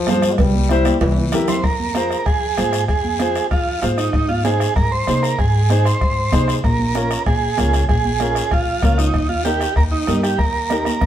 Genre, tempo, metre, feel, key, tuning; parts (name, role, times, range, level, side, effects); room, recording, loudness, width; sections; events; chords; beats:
latin, cumbia; 192 BPM; 4/4; straight; F minor; A4 = 440 Hz
bright trombone; second line; 0.0-1.4 s; E3 to Ab3; -24 LUFS; left 4 dB
upright bass; bass; 0.0-11.1 s; Bb1 to C3; -20 LUFS; equal
warm upright piano; accompaniment; 0.1-10.9 s; Db4 to C5; -23 LUFS; left 2 dB
bombo; percussion; 0.1-11.1 s; -22 LUFS; left 1 dB
congas; percussion; 0.1-11.1 s; -26 LUFS; right 3 dB
guiro; percussion; 0.1-11.1 s; -32 LUFS; left 6 dB
timbales and cowbell; percussion; 0.1-1.6 s; -27 LUFS; right 2 dB
combo organ; melody; 1.5-11.1 s; Eb4 to C5; -21 LUFS; right 4 dB
moderate stone room reverb, RT60 1.1 s; band playing live in one room; -15 LUFS; side -11 dB against mid
0.0-1.6 A section; 1.6-11.1 B section
drum fill 0.9-1.6, 10.9
0.4 C7; 1.6 Fm; 4.1 Ab; 6.6 Bbm; 9.1 Eb
0.07 | 0.39 0.70 1.01 1.32 | 1.64 1.95 2.26 2.57 | 2.89 3.20 3.51 3.83 | 4.14 4.45 4.76 5.08 | 5.39 5.70 6.01 6.33 | 6.64 6.95 7.26 7.58 | 7.89 8.20 8.52 8.83 | 9.14 9.45 9.76 10.08 | 10.39 10.70 11.01